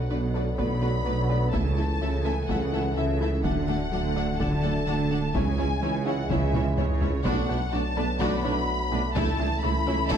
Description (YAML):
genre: cinematic, hybrid orchestral and electronic film score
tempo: 126 BPM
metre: 4/4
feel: straight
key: B dorian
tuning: A4 = 440 Hz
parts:
  - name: warm studio violin section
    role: melody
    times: 0.0-10.2 s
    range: C#5 to B5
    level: -32 LUFS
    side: left 3 dB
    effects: none
  - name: mellow French horn section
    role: sustained chords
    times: 0.0-10.2 s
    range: B3 to A4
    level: -35 LUFS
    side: left 3 dB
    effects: none
  - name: warm trombone section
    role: sustained chords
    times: 0.0-10.2 s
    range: D3 to B3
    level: -35 LUFS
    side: right 3 dB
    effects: none
  - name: punchy sub bass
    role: bass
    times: 0.0-10.2 s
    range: D1 to C#2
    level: -32 LUFS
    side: equal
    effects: none
  - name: rich symphonic cello section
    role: bass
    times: 0.0-10.2 s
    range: B2 to D3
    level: -33 LUFS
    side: right 2 dB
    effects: none
  - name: warm symphonic double bass section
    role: bass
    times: 0.0-10.2 s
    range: B1 to D2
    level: -31 LUFS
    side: right 2 dB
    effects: none
  - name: warm tuba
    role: bass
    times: 0.0-10.2 s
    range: B1 to D2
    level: -33 LUFS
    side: right 5 dB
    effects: none
  - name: warm symphonic violin section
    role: second line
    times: 0.1-10.2 s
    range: C#4 to F#5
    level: -35 LUFS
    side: left 3 dB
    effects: none
  - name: warm studio viola section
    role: accompaniment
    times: 0.1-10.2 s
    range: A3 to F#4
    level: -34 LUFS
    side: right 2 dB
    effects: none
  - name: analog pluck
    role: arpeggios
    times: 0.1-10.2 s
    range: C#3 to A4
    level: -36 LUFS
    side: left 4 dB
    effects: none
  - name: taiko ensemble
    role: drums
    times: 0.6-10.2 s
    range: none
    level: -32 LUFS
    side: equal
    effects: none
room: wet recital hall reverb, RT60 1.4 s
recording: dark, warm production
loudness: -23 LUFS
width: side -8 dB against mid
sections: 0.0-10.2 A section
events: drum fill 6.5-7.3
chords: 0.0 Bm7; 1.5 A/C#; 3.4 D; 5.4 C#m; 7.3 Bm7; 9.2 A/C#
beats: 0.12 0.59 1.07 | 1.54 2.02 2.50 2.97 | 3.45 3.92 4.40 4.88 | 5.35 5.83 6.30 6.78 | 7.26 7.73 8.21 8.69 | 9.16 9.64 10.12